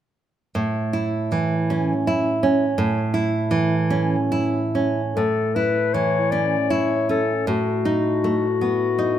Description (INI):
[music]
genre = romantic duo for clarinet and classical guitar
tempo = 45-56 BPM (dotted quarters)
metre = 6/8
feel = rubato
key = A major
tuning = A4 = 440 Hz
[part]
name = nylon-string guitar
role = accompaniment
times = 0.6-9.2 s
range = A2 to E4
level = -20 LUFS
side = right 2 dB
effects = none
[part]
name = clear clarinet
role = melody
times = 5.2-9.2 s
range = F#4 to D5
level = -22 LUFS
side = left 7 dB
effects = none
[sound]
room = moderate recital hall reverb, RT60 1.4 s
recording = none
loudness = -19 LUFS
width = side -10 dB against mid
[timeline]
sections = 0.6-5.2 A section; 5.2-9.2 B section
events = none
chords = 0.6 A; 7.5 B7/A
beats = | 0.55 1.70 | 2.79 3.91 | 5.18 6.33 | 7.48 8.62